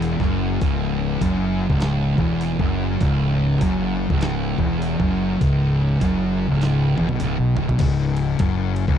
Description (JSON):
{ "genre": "stoner and doom metal", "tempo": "100 BPM", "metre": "4/4", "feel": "swing 62% on 8ths", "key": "C# minor", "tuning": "A4 = 441 Hz", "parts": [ { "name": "thick fuzz guitar", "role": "riff", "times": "0.0-9.0 s", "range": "C#2 to B2", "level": "-22 LUFS", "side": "left 8 dB", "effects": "distortion" }, { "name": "thick fuzz guitar", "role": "riff", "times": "0.0-7.8 s", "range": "C#2 to B2", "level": "-23 LUFS", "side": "right 10 dB", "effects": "distortion" }, { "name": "fuzz fingered electric bass", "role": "bass", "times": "0.0-9.0 s", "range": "C#1 to B1", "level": "-25 LUFS", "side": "equal", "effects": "overdrive" }, { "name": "dusty soul sampler-style drum kit", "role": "drums", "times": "0.0-9.0 s", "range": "crash cymbal, hi-hat, kick drum, ride cymbal, snare drum, toms", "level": "-23 LUFS", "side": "equal", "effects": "none" } ], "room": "little or no reverb", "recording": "dry, close 1970s-style studio recording", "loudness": "-18 LUFS", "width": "side -9 dB against mid", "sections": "0.0-7.8 A section; 7.8-9.0 B section", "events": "drum fill 6.6-7.8", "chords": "0.0 C#m; 7.8 N.C.", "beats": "0.02 | 0.62 1.22 1.82 2.42 | 3.02 3.62 4.21 4.81 | 5.41 6.01 6.61 7.21 | 7.81 8.40" }